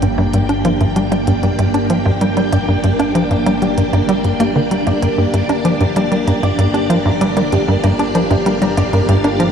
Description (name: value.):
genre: ambient, sequencer-driven space music.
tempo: 96 BPM.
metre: 4/4.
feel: straight.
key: G minor.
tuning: A4 = 443 Hz.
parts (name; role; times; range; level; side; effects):
string machine, full ensemble; sustained chords; 0.0-9.5 s; Bb3 to G5; -18 LUFS; equal; ensemble chorus.
soft round pluck; arpeggios; 0.0-9.5 s; G4 to D6; -25 LUFS; right 3 dB; chorus, auto-pan, cassette tape, tape echo.
tight sequencer bass; riff; 0.0-9.5 s; G2 to D4; -15 LUFS; equal; analog chorus, tape echo.
analog drone; bass; 0.0-9.5 s; G1; -26 LUFS; equal; chorus.
electronic hi-hat and percussion blips; percussion; 0.0-9.5 s; none; -31 LUFS; right 4 dB; tape echo.
room: wet cathedral reverb, RT60 5.3 s.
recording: in a vast, echoing space.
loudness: -13 LUFS.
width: side -7 dB against mid.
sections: 0.0-9.5 A section.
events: fade-in on synth arpeggio sound 0.0-9.5.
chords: 0.0 Gm.